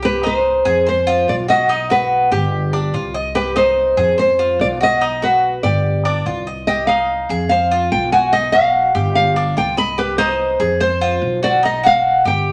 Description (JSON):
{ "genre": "latin, Cuban son and guajira", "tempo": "145 BPM", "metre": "4/4", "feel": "straight", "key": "C harmonic minor", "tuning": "A4 = 442 Hz", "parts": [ { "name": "nylon-string guitar", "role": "melody", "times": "0.0-12.5 s", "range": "G4 to B5", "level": "-19 LUFS", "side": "equal", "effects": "none" }, { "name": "Cuban tres", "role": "arpeggios", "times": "0.0-12.5 s", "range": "D4 to Eb5", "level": "-21 LUFS", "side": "equal", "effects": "none" }, { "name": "upright bass", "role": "bass", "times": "0.0-12.5 s", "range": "G1 to F2", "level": "-26 LUFS", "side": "equal", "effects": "none" } ], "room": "moderate studio reverb, RT60 0.9 s", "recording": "none", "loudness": "-16 LUFS", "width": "mono", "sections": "0.0-12.5 A section", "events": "none", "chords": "0.0 Cm; 0.9 F5; 1.7 B; 2.5 G5; 3.4 Cm; 4.2 F5; 5.0 B; 5.8 G5; 6.7 Cm; 7.5 F5; 8.3 B; 9.2 G5; 10.0 Cm; 10.8 F5; 11.6 B" }